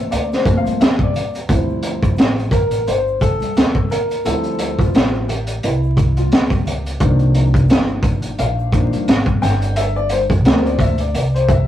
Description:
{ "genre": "hip hop, jazz-hop", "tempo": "87 BPM", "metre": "4/4", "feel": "swing 57% on 16ths", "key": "unclear", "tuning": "A4 = 440 Hz", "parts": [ { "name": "warm upright piano", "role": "accompaniment", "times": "0.0-11.7 s", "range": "Eb3 to G5", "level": "-21 LUFS", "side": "left 2 dB", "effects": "none" }, { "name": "upright bass", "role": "bass", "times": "0.0-11.7 s", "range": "G1 to Eb2", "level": "-20 LUFS", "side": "equal", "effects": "none" }, { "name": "crunchy breakbeat drum kit", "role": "drums", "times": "0.1-11.7 s", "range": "hi-hat, kick drum, snare drum", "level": "-16 LUFS", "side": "equal", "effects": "none" }, { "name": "egg shaker and congas", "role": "percussion", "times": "0.1-11.7 s", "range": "none", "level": "-31 LUFS", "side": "left 3 dB", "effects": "none" } ], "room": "moderate small room reverb, RT60 0.5 s", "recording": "rough rehearsal-room recording, warm saturation, vinyl crackle", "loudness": "-14 LUFS", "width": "side -12 dB against mid", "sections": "0.0-1.5 A section; 1.5-11.7 A section", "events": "upright piano solo 0.0-1.5, 1.5-11.7", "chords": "0.0 Gm11 (rootless); 1.5 Dm11; 7.0 Cm11; 9.4 Gm11", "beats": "0.11 0.80 | 1.49 2.18 2.87 3.56 | 4.25 4.94 5.63 6.32 | 7.01 7.70 8.39 9.08 | 9.77 10.46 11.15" }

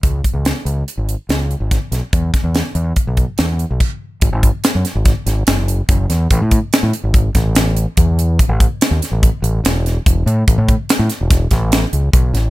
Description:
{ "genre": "math rock and midwest emo", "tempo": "144 BPM", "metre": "5/4", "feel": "straight", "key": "E major", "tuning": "A4 = 440 Hz", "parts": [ { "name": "growling fingered electric bass", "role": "bass", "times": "0.0-12.5 s", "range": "E1 to A2", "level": "-16 LUFS", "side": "equal", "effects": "overdrive" }, { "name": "crisp fusion drum kit", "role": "drums", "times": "0.0-12.4 s", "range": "crash cymbal, hi-hat, kick drum, snare drum", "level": "-15 LUFS", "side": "equal", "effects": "none" } ], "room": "little or no reverb", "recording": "none", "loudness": "-13 LUFS", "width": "side -18 dB against mid", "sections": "0.0-4.2 A section; 4.2-12.5 B section", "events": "none", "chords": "none", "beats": "| 0.04 0.45 0.87 1.29 1.71 | 2.13 2.55 2.97 3.39 3.80 | 4.22 4.64 5.06 5.47 5.89 | 6.31 6.73 7.14 7.56 7.98 | 8.39 8.81 9.22 9.64 10.06 | 10.47 10.89 11.30 11.71 12.13" }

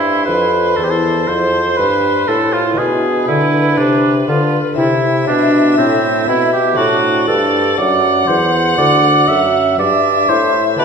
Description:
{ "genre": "classical, baroque-style sonata movement with continuo", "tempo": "60 BPM", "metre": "4/4", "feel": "straight", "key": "unclear", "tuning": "A4 = 441 Hz", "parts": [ { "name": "warm violin", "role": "melody", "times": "0.0-10.8 s", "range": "B4 to F#5", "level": "-19 LUFS", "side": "left 5 dB", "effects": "none" }, { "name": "clear oboe", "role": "second line", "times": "0.0-10.8 s", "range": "C4 to E5", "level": "-14 LUFS", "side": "right 3 dB", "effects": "none" }, { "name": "lute", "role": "accompaniment", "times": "0.0-10.8 s", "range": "D2 to E4", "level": "-21 LUFS", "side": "left 2 dB", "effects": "none" }, { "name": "warm bassoon", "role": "bass", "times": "0.0-10.8 s", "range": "D2 to D3", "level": "-17 LUFS", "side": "equal", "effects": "none" } ], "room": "wet recital hall reverb, RT60 1.5 s", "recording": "heard from further back in the room", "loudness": "-11 LUFS", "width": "side -6 dB against mid", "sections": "0.0-10.8 A section", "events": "none", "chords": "0.0 Am; 2.8 E7/B; 4.8 Am; 6.8 D7", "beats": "0.77 1.78 | 2.78 3.78 4.78 5.77 | 6.78 7.78 8.78 9.79 | 10.79" }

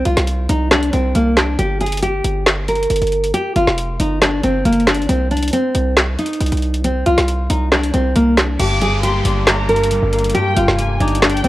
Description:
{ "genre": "hip hop, trap", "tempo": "137 BPM", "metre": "4/4", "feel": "half-time", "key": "G phrygian", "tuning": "A4 = 436 Hz", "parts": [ { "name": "nylon-string guitar", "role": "melody", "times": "0.0-11.5 s", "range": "Bb3 to Bb4", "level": "-18 LUFS", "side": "equal", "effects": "none" }, { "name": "hard-hitting 808-style bass", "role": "bass", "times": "0.0-11.5 s", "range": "F1 to C2", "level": "-19 LUFS", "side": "equal", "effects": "none" }, { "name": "trap drum kit", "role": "drums", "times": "0.1-11.5 s", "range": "crash cymbal, handclaps, hi-hat, snare drum", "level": "-18 LUFS", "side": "equal", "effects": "none" }, { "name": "warm studio violin section", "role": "second line", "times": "8.6-11.5 s", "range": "G5 to D6", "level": "-23 LUFS", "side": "left 1 dB", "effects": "ping-pong delay" }, { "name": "concert harp", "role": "accompaniment", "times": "8.6-11.5 s", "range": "G2 to D4", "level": "-19 LUFS", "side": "left 1 dB", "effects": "none" }, { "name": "downlifter", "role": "sound effects", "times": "8.6-11.5 s", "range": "none", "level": "-30 LUFS", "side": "equal", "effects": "none" } ], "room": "little or no reverb", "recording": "worn, warbling old tape, cassette tape, warbly pitch drift", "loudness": "-14 LUFS", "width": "side -16 dB against mid", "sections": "0.0-8.6 A section; 8.6-11.5 B section", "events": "none", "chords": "0.0 N.C.; 1.6 Gm; 5.1 Cm; 8.6 Gm", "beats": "0.27 0.71 1.15 | 1.59 2.02 2.46 2.90 | 3.34 3.78 4.21 4.65 | 5.09 5.53 5.97 6.41 | 6.84 7.28 7.72 8.16 | 8.60 9.03 9.47 9.91 | 10.35 10.78 11.22" }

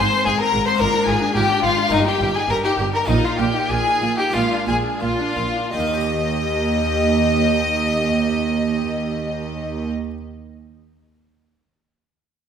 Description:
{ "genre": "classical, baroque-style concerto movement with solo episodes", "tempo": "82-112 BPM", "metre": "4/4", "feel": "straight", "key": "Eb major", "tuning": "A4 = 441 Hz", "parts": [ { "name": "clear violin", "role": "melody", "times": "0.0-9.9 s", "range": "Eb4 to Eb5", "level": "-23 LUFS", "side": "left 1 dB", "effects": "none" }, { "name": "rich chamber violin section", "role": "melody", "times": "0.0-9.9 s", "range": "Eb5 to C6", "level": "-26 LUFS", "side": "left 5 dB", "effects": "none" }, { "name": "rich chamber violin section", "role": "second line", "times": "0.0-9.9 s", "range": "Eb4 to Eb5", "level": "-25 LUFS", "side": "left 3 dB", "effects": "none" }, { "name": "harpsichord", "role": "accompaniment", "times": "0.0-10.2 s", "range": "G2 to Eb5", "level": "-28 LUFS", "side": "left 4 dB", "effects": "none" }, { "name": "rich symphonic viola section", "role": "accompaniment", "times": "0.0-9.9 s", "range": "Ab3 to G4", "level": "-28 LUFS", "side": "equal", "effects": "none" }, { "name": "rich studio double bass section", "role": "bass", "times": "0.0-9.9 s", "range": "G1 to Eb2", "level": "-26 LUFS", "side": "right 3 dB", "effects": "none" }, { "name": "rich symphonic cello section", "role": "bass", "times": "0.0-9.9 s", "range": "Eb2 to Bb2", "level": "-25 LUFS", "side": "right 6 dB", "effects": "none" } ], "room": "moderate scoring stage reverb, RT60 1.9 s", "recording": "none", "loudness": "-17 LUFS", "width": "side -8 dB against mid", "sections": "0.0-5.7 A section; 5.7-11.6 B section", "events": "slowing down 0.0-5.7", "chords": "0.0 Fm/Ab; 0.8 Bb7/Ab; 1.9 Eb/G; 3.1 Bbsus4; 4.3 Bb7; 5.7 Eb", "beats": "0.27 | 0.81 1.36 1.92 2.49 | 3.09 3.70 4.34 5.02 | 5.74 6.47 7.20 7.93 | 8.66 9.40 10.13" }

